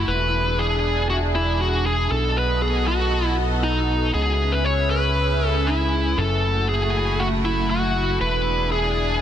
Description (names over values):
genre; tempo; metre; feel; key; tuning
synthwave; 118 BPM; 4/4; straight; F# minor; A4 = 440 Hz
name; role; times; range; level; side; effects
bluesy overdriven lead guitar; melody; 0.0-9.2 s; D#4 to C#5; -22 LUFS; equal; distortion, ping-pong delay
lush unison pad; sustained chords; 0.0-9.2 s; A3 to E5; -26 LUFS; equal; chorus, phaser
fat analog bass; bass; 0.0-9.2 s; E1 to C#2; -23 LUFS; equal; none
room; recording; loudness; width
moderate recital hall reverb, RT60 1.4 s, digital ambience; dense, heavily limited modern master; -19 LUFS; side -10 dB against mid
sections
0.0-9.2 A section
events
none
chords
0.1 E7; 2.1 B7; 4.1 C#m7; 6.2 F#m7; 8.2 E7